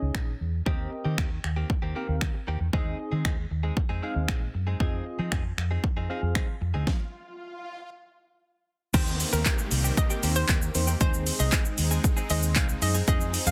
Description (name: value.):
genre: dance-pop.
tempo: 116 BPM.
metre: 4/4.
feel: straight.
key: unclear.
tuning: A4 = 440 Hz.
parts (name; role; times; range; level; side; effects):
soft electric-piano-like synth keys; accompaniment; 0.0-13.5 s; Bb3 to F5; -38 LUFS; equal; chorus, phaser, sidechain pumping.
vintage muted fingered electric bass; bass; 0.0-13.5 s; Bb1 to F3; -30 LUFS; equal; sidechain pumping.
pop drum kit; drums; 0.1-13.5 s; crash cymbal, finger snaps, handclaps, hi-hat, kick drum, shaker, snare drum; -28 LUFS; equal; overdrive, soft clipping on snare.
direct-recorded clean electric guitar; riff; 0.7-13.5 s; Eb3 to Ab4; -39 LUFS; equal; subtle chorus.
swell and downlifter; sound effects; 6.7-13.1 s; none; -44 LUFS; equal; none.
hollow square pluck; melody; 8.9-13.5 s; Bb4 to F5; -36 LUFS; equal; chorus, sidechain pumping.
supersaw pad; sustained chords; 9.3-13.5 s; Eb3 to Ab4; -39 LUFS; equal; sidechain pumping.
room: little or no reverb.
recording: dense, heavily limited modern master.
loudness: -27 LUFS.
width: mono.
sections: 0.0-8.9 A section; 8.9-13.5 B section.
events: swell 6.7-8.9; stop 6.9-8.9; drop 8.9-13.5.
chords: 0.0 Dbsus2; 0.7 Eb6; 2.7 Ab/Eb; 4.8 Fm7; 6.9 N.C.; 8.9 Eb6; 11.0 Ab.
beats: 0.15 | 0.66 1.18 1.70 2.21 | 2.73 3.25 3.77 4.28 | 4.80 5.32 5.84 6.35 | 6.87 7.39 7.91 8.42 | 8.94 9.46 9.97 10.49 | 11.01 11.53 12.04 12.56 | 13.08.